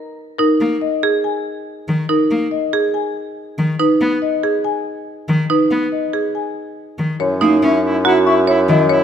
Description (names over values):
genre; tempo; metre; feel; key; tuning
classical, minimalist pattern music; 141 BPM; 4/4; straight; F# mixolydian; A4 = 440 Hz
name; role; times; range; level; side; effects
marimba with medium hard mallets; melody; 0.4-9.0 s; A#4 to A#5; -21 LUFS; left 7 dB; none
marimba with medium hard mallets; arpeggios; 0.4-8.8 s; D#4 to C#5; -18 LUFS; right 3 dB; none
rich cello; accompaniment; 0.6-8.8 s; D#3 to C#4; -20 LUFS; left 1 dB; none
warm soprano saxophone; second line; 7.2-9.0 s; E4; -21 LUFS; right 3 dB; none
warm bassoon; bass; 7.2-9.0 s; F#2; -18 LUFS; left 1 dB; none
concert flute; arpeggios; 8.0-8.3 s; F#5 to C#6; -22 LUFS; left 6 dB; none
room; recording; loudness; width
light reverb; none; -14 LUFS; side -8 dB against mid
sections
0.0-7.2 A section; 7.2-9.0 A section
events
none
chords
0.4 D#5; 3.8 G#m; 7.2 F#7(no3)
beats
| 0.39 0.82 1.24 1.67 | 2.09 2.52 2.94 3.37 | 3.80 4.22 4.65 5.07 | 5.50 5.92 6.35 6.77 | 7.20 7.62 8.05 8.48 | 8.90